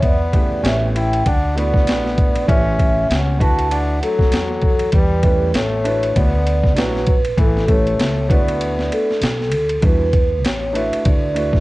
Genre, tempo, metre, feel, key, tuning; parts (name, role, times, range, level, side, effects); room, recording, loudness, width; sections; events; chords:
hip hop, jazz-hop; 98 BPM; 4/4; swing 58% on 16ths; A4 = 440 Hz
vibraphone with soft mallets; melody; 0.0-11.6 s; A4 to A5; -21 LUFS; right 1 dB; cassette tape
bright trombone; second line; 0.0-9.2 s; E3 to F#4; -24 LUFS; left 2 dB
upright bass; bass; 0.0-11.6 s; A1 to E2; -21 LUFS; equal
boom bap sampler-style drum kit; drums; 0.0-11.6 s; hi-hat, kick drum, ride cymbal, snare drum; -18 LUFS; equal; overdrive, cassette tape
dark concert grand piano; accompaniment; 0.3-11.6 s; C#3 to B4; -25 LUFS; right 2 dB
little or no reverb; home recording on cassette, faint mains hum; -14 LUFS; side -19 dB against mid
0.0-9.8 A section; 9.8-11.6 A section
break 8.6-9.8
0.0 Em7; 0.6 A7; 1.3 D69; 2.5 A7; 3.4 D69; 4.9 Em; 5.5 A; 6.2 D69; 7.4 A7; 8.3 D69; 9.8 Em9; 10.4 A; 11.1 D69